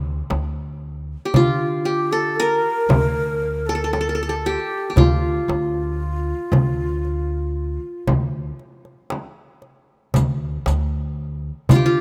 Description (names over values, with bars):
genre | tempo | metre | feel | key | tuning
Turkish makam ensemble | 116 BPM (eighths) | 10/8 | straight | D minor | A4 = 440 Hz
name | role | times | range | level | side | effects
upright bass | bass | 0.0-12.0 s | D2 to D3 | -26 LUFS | equal | none
darbuka | percussion | 0.3-11.9 s | none | -21 LUFS | equal | none
frame drum | percussion | 0.3-11.9 s | none | -28 LUFS | equal | none
qanun | melody | 1.3-12.0 s | F4 to Bb4 | -24 LUFS | equal | none
breathy ney | second line | 1.3-12.0 s | F4 to Bb4 | -30 LUFS | equal | none
riq | percussion | 10.2-11.9 s | none | -35 LUFS | equal | none
room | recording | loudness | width
light reverb, studio ambience | rough home demo mix | -21 LUFS | mono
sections
0.0-12.0 A section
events
none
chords
none